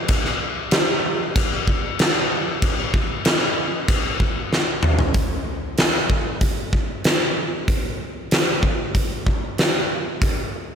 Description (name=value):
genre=rock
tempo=95 BPM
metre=4/4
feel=straight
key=none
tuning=none
part: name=huge arena drum kit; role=drums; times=0.1-10.4 s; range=crash cymbal, hi-hat, kick drum, snare drum, toms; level=-19 LUFS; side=equal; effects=none
room=moderate huge ambient reverb, RT60 4.7 s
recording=none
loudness=-18 LUFS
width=side -7 dB against mid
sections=0.0-5.2 A section; 5.2-10.8 B section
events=drum fill 4.5-5.2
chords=none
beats=| 0.10 0.73 1.37 2.00 | 2.63 3.26 3.89 4.53 | 5.16 5.79 6.42 7.05 | 7.69 8.32 8.95 9.58 | 10.21